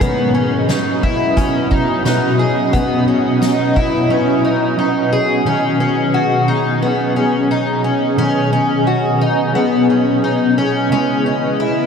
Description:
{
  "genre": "dream pop",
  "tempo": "88 BPM",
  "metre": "4/4",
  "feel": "straight",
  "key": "B major",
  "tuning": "A4 = 440 Hz",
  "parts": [
    { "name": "mellow electric guitar", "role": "accompaniment", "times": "0.0-11.9 s", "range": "B2 to B4", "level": "-20 LUFS", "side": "right 3 dB", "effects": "tremolo, ensemble chorus" },
    { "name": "shimmering ambient pad", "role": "sustained chords", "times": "0.0-11.9 s", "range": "B2 to D#5", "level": "-18 LUFS", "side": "equal", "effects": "chorus, built-in reverb, phaser" },
    { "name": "fingerpicked twelve-string acoustic guitar", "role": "arpeggios", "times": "0.0-11.9 s", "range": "B3 to G#4", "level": "-17 LUFS", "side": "left 3 dB", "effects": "analog chorus, analog delay" },
    { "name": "soft-mallet drum kit", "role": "drums", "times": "0.0-3.9 s", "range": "hi-hat, kick drum, snare drum, tambourine", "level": "-22 LUFS", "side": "equal", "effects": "none" },
    { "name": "vibraphone with hard mallets", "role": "texture", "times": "2.1-7.4 s", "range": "F#4 to G#4", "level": "-31 LUFS", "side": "equal", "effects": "none" }
  ],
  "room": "wet huge ambient reverb, RT60 8.0 s",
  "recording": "dreamy mix soaked in reverb",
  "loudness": "-13 LUFS",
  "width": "side -6 dB against mid",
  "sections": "0.0-5.5 A section; 5.5-11.9 B section",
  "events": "none",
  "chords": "0.0 Badd9; 5.5 B69; 10.9 C#m7"
}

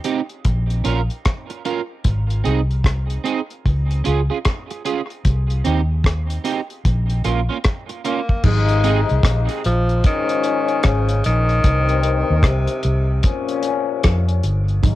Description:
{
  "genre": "dub reggae",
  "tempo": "75 BPM",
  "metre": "4/4",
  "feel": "swing 62% on 16ths",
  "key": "unclear",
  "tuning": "A4 = 442 Hz",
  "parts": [
    { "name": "electric guitar at the edge of break-up", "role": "accompaniment", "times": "0.0-9.0 s", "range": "Bb3 to Bb4", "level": "-25 LUFS", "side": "right 7 dB", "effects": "analog chorus, cassette tape, dub echo" },
    { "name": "deep reggae drum kit", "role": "drums", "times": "0.0-15.0 s", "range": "crash cymbal, hi-hat, kick drum, rim click", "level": "-18 LUFS", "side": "equal", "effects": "cassette tape" },
    { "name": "vintage muted fingered electric bass", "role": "bass", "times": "0.5-15.0 s", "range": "G1 to F2", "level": "-18 LUFS", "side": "equal", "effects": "none" },
    { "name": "warm tenor saxophone", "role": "melody", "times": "8.1-13.2 s", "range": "C3 to Bb3", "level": "-23 LUFS", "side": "equal", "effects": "dub echo" },
    { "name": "muted trombone section", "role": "second line", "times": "8.4-15.0 s", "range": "G2 to Eb4", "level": "-23 LUFS", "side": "left 8 dB", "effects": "cassette tape, dub echo" },
    { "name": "congas", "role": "percussion", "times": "8.4-8.7, 14.8-15.0 s", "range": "none", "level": "-30 LUFS", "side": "right 10 dB", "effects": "none" }
  ],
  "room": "light reverb",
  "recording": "home recording on cassette",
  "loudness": "-17 LUFS",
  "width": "side -15 dB against mid",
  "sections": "0.0-8.4 A section; 8.4-15.0 B section",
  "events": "part muted 8.4-14.8",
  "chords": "0.4 Bbm; 2.0 Ab; 3.6 Db; 5.2 Cm; 6.8 Bbm; 8.4 Ab; 10.0 Db; 11.6 Cm; 13.2 Bbm"
}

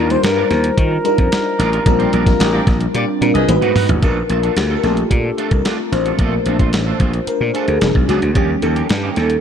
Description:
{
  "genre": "polished 1980s jazz-funk pop",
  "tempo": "111 BPM",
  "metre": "4/4",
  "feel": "straight",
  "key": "Bb major",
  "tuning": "A4 = 442 Hz",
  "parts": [
    { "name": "warm flugelhorn", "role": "melody", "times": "0.0-3.4 s", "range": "Bb4 to C5", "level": "-22 LUFS", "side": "left 2 dB", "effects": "ping-pong delay" },
    { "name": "FM electric piano with soft pad layer", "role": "accompaniment", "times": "0.0-9.4 s", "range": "F3 to C5", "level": "-18 LUFS", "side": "left 1 dB", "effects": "phaser, lush chorus" },
    { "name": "electric guitar at the edge of break-up", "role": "riff", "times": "0.0-9.3 s", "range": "Eb3 to C5", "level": "-26 LUFS", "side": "right 6 dB", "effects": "ensemble chorus" },
    { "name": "gritty slap bass", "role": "bass", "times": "0.0-9.4 s", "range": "E1 to Eb3", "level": "-18 LUFS", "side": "equal", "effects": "overdrive" },
    { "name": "dusty soul sampler-style drum kit", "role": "drums", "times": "0.1-9.4 s", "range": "hi-hat, kick drum, snare drum, toms", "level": "-18 LUFS", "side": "equal", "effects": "none" },
    { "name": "warm horn section", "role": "second line", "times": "2.4-3.5 s", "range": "F4 to Eb5", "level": "-24 LUFS", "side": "left 2 dB", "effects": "none" }
  ],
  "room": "light reverb",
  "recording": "dark, warm production",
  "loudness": "-13 LUFS",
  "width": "side -8 dB against mid",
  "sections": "0.0-4.0 A section; 4.0-9.4 B section",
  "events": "band accent 1.9-4.0; drum fill 3.5-4.0; FM electric piano solo 4.0-9.4",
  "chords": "0.0 Ebmaj9; 1.9 Bb69; 3.5 Abm7; 4.0 Bbmaj7; 7.8 E9; 8.4 Eb7"
}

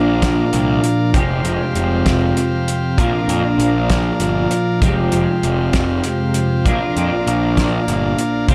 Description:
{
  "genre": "psychedelic rock",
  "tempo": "65 BPM (dotted quarters)",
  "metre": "6/8",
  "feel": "straight",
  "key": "unclear",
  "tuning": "A4 = 441 Hz",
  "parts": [
    { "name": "combo organ", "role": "sustained chords", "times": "0.0-8.5 s", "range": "F4 to F5", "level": "-27 LUFS", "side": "equal", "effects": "none" },
    { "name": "twelve-string electric guitar", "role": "riff", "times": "0.0-8.5 s", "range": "F2 to G4", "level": "-20 LUFS", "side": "equal", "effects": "rotary speaker, double-tracked, analog delay" },
    { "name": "fuzz picked electric bass", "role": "bass", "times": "0.0-8.5 s", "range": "F1 to F2", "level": "-23 LUFS", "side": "equal", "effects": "overdrive" },
    { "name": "cloth-damped thuddy drum kit", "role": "drums", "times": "0.2-8.5 s", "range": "hi-hat, kick drum, snare drum", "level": "-23 LUFS", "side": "equal", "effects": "analog delay" }
  ],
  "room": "light reverb, small room ambience",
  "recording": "echo-heavy mix",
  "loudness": "-17 LUFS",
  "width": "mono",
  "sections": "0.0-8.5 A section",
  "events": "none",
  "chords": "0.0 Bb; 1.1 Fmadd9; 3.0 Bb; 4.8 Fmadd9; 6.7 Bb"
}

